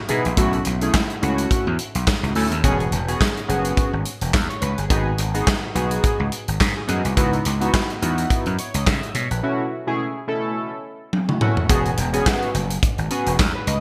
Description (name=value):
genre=early-eighties boogie funk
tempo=106 BPM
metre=4/4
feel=swing 56% on 16ths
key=unclear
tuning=A4 = 440 Hz
part: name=chorused polysynth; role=accompaniment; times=0.1-13.8 s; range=B2 to E5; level=-26 LUFS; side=equal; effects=none
part: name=gritty slap bass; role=bass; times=0.1-13.8 s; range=E1 to B2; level=-25 LUFS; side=equal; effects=overdrive
part: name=modern studio drum kit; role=drums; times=0.1-13.8 s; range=handclaps, hi-hat, kick drum, snare drum, toms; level=-24 LUFS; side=equal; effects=gated reverb
room=light reverb, studio reverb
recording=bright 1980s-style digital production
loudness=-21 LUFS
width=mono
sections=0.0-11.7 A section; 11.7-13.8 B section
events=drum fill 11.1-11.7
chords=0.4 B7sus4; 2.6 E69; 4.9 G#m7; 7.2 C#m11; 9.4 B7sus4; 11.7 E69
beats=| 0.37 0.94 1.51 2.07 | 2.64 3.20 3.77 4.34 | 4.90 5.47 6.03 6.60 | 7.17 7.73 8.30 8.86 | 9.43 10.00 10.56 11.13 | 11.70 12.26 12.83 13.39